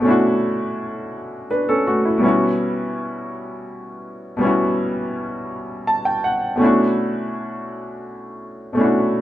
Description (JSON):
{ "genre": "R&B", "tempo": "55 BPM (dotted quarters)", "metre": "6/8", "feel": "straight", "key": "B minor", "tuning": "A4 = 439 Hz", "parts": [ { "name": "clear concert grand piano", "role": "solo", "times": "0.0-9.2 s", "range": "B2 to A5", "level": "-18 LUFS", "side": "equal", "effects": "none" } ], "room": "light reverb", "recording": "band playing live in one room", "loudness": "-18 LUFS", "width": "side -13 dB against mid", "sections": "0.0-9.2 A section", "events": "grand piano fill 5.5-6.6", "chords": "0.0 Bm11; 2.2 A13/B; 6.6 Bm11" }